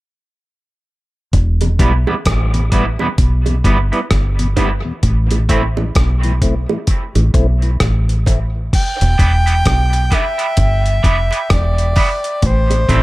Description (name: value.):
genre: dub reggae.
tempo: 65 BPM.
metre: 4/4.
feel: swing 60% on 16ths.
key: E minor.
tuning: A4 = 440 Hz.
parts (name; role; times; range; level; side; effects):
deep dub fingered electric bass; bass; 1.3-13.0 s; E1 to B1; -14 LUFS; equal; none.
dusty soul sampler-style drum kit; drums; 1.3-13.0 s; crash cymbal, hi-hat, kick drum, rim click; -17 LUFS; equal; overdrive.
mellow tonewheel organ; accompaniment; 1.6-9.1 s; E2 to E4; -24 LUFS; left 2 dB; overdrive, chorus vibrato, slow rotary speaker, high-pass filter.
bongos; percussion; 1.6-12.9 s; none; -26 LUFS; right 6 dB; high-pass filter on perc, dub echo.
electric guitar at the edge of break-up; accompaniment; 1.8-13.0 s; G3 to E4; -22 LUFS; right 3 dB; high-pass filter, dub echo.
breathy soprano saxophone; melody; 8.8-13.0 s; C5 to G5; -19 LUFS; equal; dub echo.
room: little or no reverb.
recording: none.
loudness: -13 LUFS.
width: side -19 dB against mid.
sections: 1.3-8.7 A section; 8.7-13.0 B section.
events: filter sweep 5.0-12.4; part muted 12.4-13.0.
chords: 1.3 Em; 5.0 Am; 8.7 Em; 12.4 Am.